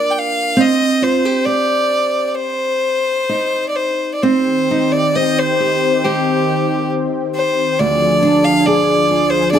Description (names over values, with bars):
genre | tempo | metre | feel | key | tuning
celtic folk, Celtic slow air | 62-72 BPM | 4/4 | rubato | C minor | A4 = 440 Hz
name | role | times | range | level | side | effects
clear fiddle | melody | 0.0-9.6 s | G4 to G5 | -16 LUFS | left 1 dB | none
picked steel-string acoustic guitar | accompaniment | 0.0-9.6 s | D2 to C5 | -17 LUFS | right 1 dB | none
analog string pad | sustained chords | 4.2-9.6 s | Eb3 to Ab4 | -21 LUFS | equal | ensemble chorus
room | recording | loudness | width
moderate recital hall reverb, RT60 1.3 s | close, detailed microphones | -13 LUFS | side -9 dB against mid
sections
0.0-4.2 A section; 4.2-9.6 B section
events
none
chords
0.0 Bb; 0.6 Cm; 7.8 Ddim